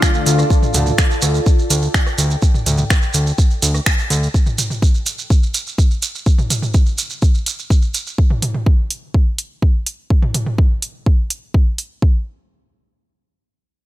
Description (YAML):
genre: melodic techno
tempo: 125 BPM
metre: 4/4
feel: straight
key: D minor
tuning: A4 = 440 Hz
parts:
  - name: sweeping resonant pad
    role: sustained chords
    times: 0.0-4.3 s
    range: F4 to A5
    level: -26 LUFS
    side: right 1 dB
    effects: chorus, phaser, sidechain pumping
  - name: analog synth brass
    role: stabs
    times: 0.0-0.5 s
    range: D3 to D4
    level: -25 LUFS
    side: left 2 dB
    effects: chorus, sidechain pumping, ping-pong delay
  - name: electronic kick drum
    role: drums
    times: 0.0-12.1 s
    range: none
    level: -14 LUFS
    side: equal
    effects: none
  - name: punchy analog drum machine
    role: drums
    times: 0.0-11.9 s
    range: finger snaps, hi-hat, rim click, toms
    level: -21 LUFS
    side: right 1 dB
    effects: overdrive, sidechain pumping on toms, sidechain pumping on hats, gated reverb
  - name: shekere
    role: percussion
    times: 0.0-8.2 s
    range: none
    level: -24 LUFS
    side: right 4 dB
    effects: none
  - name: ethereal airy pad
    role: texture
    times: 0.0-4.3 s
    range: A4 to A5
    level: -31 LUFS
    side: left 1 dB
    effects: ensemble chorus, built-in reverb, sidechain pumping
  - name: fat analog bass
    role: bass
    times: 0.3-4.3 s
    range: D2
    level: -16 LUFS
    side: equal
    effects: sidechain pumping
room: little or no reverb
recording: bright 1980s-style digital production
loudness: -14 LUFS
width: side -16 dB against mid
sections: 0.0-12.0 A section; 12.0-13.9 B section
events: fade-out on ambient pad 0.0-4.3; filter sweep on analog synth pad 0.0-4.3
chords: 0.0 Dm; 4.3 N.C.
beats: 0.02 | 0.50 0.98 1.46 1.94 | 2.42 2.90 3.38 3.86 | 4.34 4.82 5.30 5.78 | 6.26 6.74 7.22 7.70 | 8.18 8.66 9.14 9.62 | 10.10 10.58 11.06 11.54 | 12.02